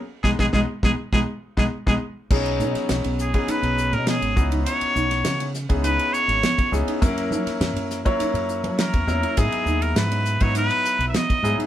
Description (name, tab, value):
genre	electric jazz fusion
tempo	102 BPM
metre	4/4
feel	straight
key	unclear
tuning	A4 = 440 Hz
part	trumpet with straight mute	melody	0.2-11.6 s	Ab4 to E5	-23 LUFS	equal	none
part	breathy bass clarinet	second line	0.2-1.9 s	Ab3	-26 LUFS	right 1 dB	none
part	bright concert grand piano	accompaniment	0.2-11.7 s	E3 to C#5	-26 LUFS	left 2 dB	none
part	fingered electric bass	bass	0.2-11.6 s	G#1 to F#3	-26 LUFS	equal	none
part	damped 70s drum kit	drums	0.2-11.7 s	crash cymbal, hi-hat, kick drum, ride cymbal, snare drum	-25 LUFS	equal	none
part	mellow electric guitar	stabs	2.6-11.7 s	B3 to E4	-31 LUFS	right 2 dB	none
room	moderate small room reverb, RT60 0.5 s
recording	band playing live in one room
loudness	-19 LUFS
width	side -12 dB against mid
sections	0.0-2.3 A section; 2.3-11.7 B section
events	band accent 0.0-2.3; drum fill 1.7-2.3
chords	0.0 Abm/Cb; 2.3 B69; 4.4 C#m11; 7.0 F#7; 9.4 Emaj9